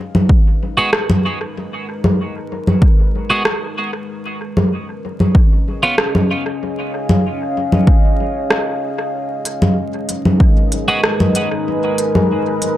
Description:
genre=ambient dub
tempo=95 BPM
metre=4/4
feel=straight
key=G# dorian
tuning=A4 = 440 Hz
part: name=deep dark ambient pad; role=sustained chords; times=0.0-12.8 s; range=G#3 to E#5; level=-22 LUFS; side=left 1 dB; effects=chorus, built-in reverb
part: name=organic electronic drum kit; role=drums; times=0.1-12.7 s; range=congas, hi-hat, rim click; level=-16 LUFS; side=equal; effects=overdrive, dub echo
part: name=electronic kick drum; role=drums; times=0.3-10.5 s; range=none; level=-11 LUFS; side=equal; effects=overdrive
part: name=twelve-string electric guitar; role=stabs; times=0.8-6.0, 10.9-11.0 s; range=G#3 to F#4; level=-20 LUFS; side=right 2 dB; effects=dub echo
room=light reverb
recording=vinyl crackle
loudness=-14 LUFS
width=side -13 dB against mid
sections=0.0-12.8 A section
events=fade-in on ambient pad 0.0-12.8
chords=0.0 G#m; 4.1 C#7; 9.1 G#m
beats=0.30 0.93 | 1.56 2.19 2.82 3.46 | 4.09 4.72 5.35 5.98 | 6.61 7.24 7.88 8.51 | 9.14 9.77 10.40 11.03 | 11.66 12.30

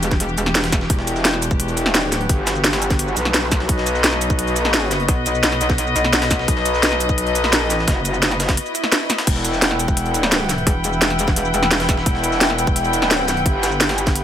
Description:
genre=dark technical drum and bass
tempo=172 BPM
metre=4/4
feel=straight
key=E harmonic minor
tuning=A4 = 440 Hz
part: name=dark studio string section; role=sustained chords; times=0.0-14.2 s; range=E3 to G5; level=-22 LUFS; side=left 2 dB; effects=sidechain pumping
part: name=metallic wobble bass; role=bass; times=0.0-0.9, 5.1-6.5, 10.7-12.0 s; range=E1 to B1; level=-21 LUFS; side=equal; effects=chorus
part: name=breakbeat sampler-style drum kit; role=drums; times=0.0-14.2 s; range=hi-hat, snare drum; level=-28 LUFS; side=equal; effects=none
part: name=drum and bass drum kit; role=drums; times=0.0-14.2 s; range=crash cymbal, hi-hat, shaker, snare drum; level=-20 LUFS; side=equal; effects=none
part: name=electronic kick drum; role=drums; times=0.1-14.1 s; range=none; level=-20 LUFS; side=equal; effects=none
part: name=metallic wobble bass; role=bass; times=0.9-14.2 s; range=E1 to B1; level=-21 LUFS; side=equal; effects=distortion, chorus, overdrive, sidechain pumping
part: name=swell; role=sound effects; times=8.6-9.3 s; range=none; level=-30 LUFS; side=right 2 dB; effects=none
room=light reverb, digital ambience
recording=none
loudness=-16 LUFS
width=side -10 dB against mid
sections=0.0-14.2 A section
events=swell 8.6-9.3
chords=0.0 Emadd9; 3.7 B; 9.3 Emadd9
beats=0.20 0.55 | 0.90 1.25 1.60 1.95 | 2.29 2.64 2.99 3.34 | 3.69 4.04 4.39 4.74 | 5.08 5.43 5.78 6.13 | 6.48 6.83 7.18 7.53 | 7.88 8.22 8.57 8.92 | 9.27 9.62 9.97 10.32 | 10.67 11.02 11.36 11.71 | 12.06 12.41 12.76 13.11 | 13.46 13.81 14.15

